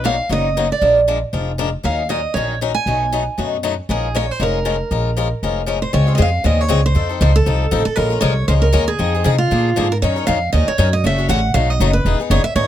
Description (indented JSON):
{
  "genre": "acoustic string swing (jazz manouche)",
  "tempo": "235 BPM",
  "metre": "4/4",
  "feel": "swing 56% on 8ths",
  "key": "Bb minor, Db major from 5.9 s",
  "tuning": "A4 = 439 Hz",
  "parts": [
    { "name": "picked steel-string acoustic guitar", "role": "melody", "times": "0.0-12.7 s", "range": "F4 to Ab5", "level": "-19 LUFS", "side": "right 3 dB", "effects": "none" },
    { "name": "picked swing-style acoustic guitar", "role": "accompaniment", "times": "0.0-12.7 s", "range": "B2 to Bb4", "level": "-21 LUFS", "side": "left 8 dB", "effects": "none" },
    { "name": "upright bass", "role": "bass", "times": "0.0-12.7 s", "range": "E1 to C3", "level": "-18 LUFS", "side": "right 1 dB", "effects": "none" }
  ],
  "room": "little or no reverb",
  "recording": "close, detailed microphones",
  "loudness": "-15 LUFS",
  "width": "side -11 dB against mid",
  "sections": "0.0-5.9 A section; 5.9-12.7 B section",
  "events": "none",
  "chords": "0.0 Bmaj7; 0.8 Bb7; 1.8 Ebm7; 2.9 B6; 3.9 Bbm7; 5.9 Dbmaj7; 7.0 F7; 8.0 Bbm7; 9.0 Fm7; 9.5 Bb7; 10.0 Ebm7; 11.0 Gbm7; 11.5 Cb7; 12.1 Emaj7"
}